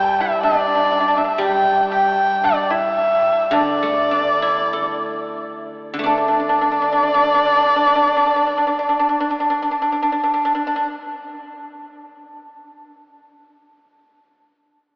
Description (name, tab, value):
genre	chinese traditional, Chinese chamber ensemble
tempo	45-64 BPM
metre	4/4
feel	rubato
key	unclear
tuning	A4 = 440 Hz
part	dark erhu	melody	0.0-9.5 s	D5 to G5	-18 LUFS	equal	none
part	pipa	second line	0.0-10.9 s	D4 to G4	-20 LUFS	equal	none
part	guzheng	accompaniment	0.0-12.6 s	D3 to A4	-26 LUFS	equal	none
room	wet cathedral reverb, RT60 5.3 s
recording	recorded in a church or concert hall, AM radio sound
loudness	-15 LUFS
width	side -29 dB against mid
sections	0.0-6.1 A section; 6.1-11.2 B section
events	slowing down 0.0-6.1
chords	none